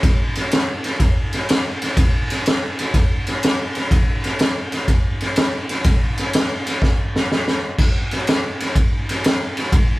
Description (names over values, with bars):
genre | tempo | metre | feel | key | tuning
blues | 124 BPM | 4/4 | swing 67% on 8ths | none | none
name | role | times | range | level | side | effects
raw garage drum kit | drums | 0.0-9.9 s | crash cymbal, kick drum, ride cymbal, snare drum | -16 LUFS | equal | none
room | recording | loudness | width
light reverb | band playing live in one room | -17 LUFS | side -20 dB against mid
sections
0.0-7.8 A section; 7.8-10.0 B section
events
drum fill 6.8-7.8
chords
none